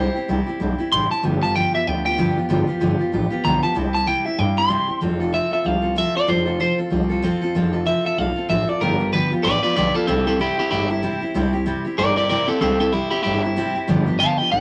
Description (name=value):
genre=rockabilly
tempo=190 BPM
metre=4/4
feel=swing 59% on 8ths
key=C major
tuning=A4 = 440 Hz
part: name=electric guitar at the edge of break-up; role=melody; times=0.0-14.6 s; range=C4 to C6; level=-23 LUFS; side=equal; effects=none
part: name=picked steel-string acoustic guitar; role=accompaniment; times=0.0-14.6 s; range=G2 to A4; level=-24 LUFS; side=equal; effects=none
part: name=upright bass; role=bass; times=0.0-14.6 s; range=F1 to G2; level=-27 LUFS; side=equal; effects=none
room=moderate studio reverb, RT60 0.7 s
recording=nothing above 10.3 kHz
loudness=-20 LUFS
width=mono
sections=0.0-5.0 A section; 5.0-14.6 B section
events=clean electric guitar solo 0.0-5.0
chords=0.0 C; 1.2 G7; 3.8 C; 5.0 F; 8.8 G7; 10.1 C; 13.9 G7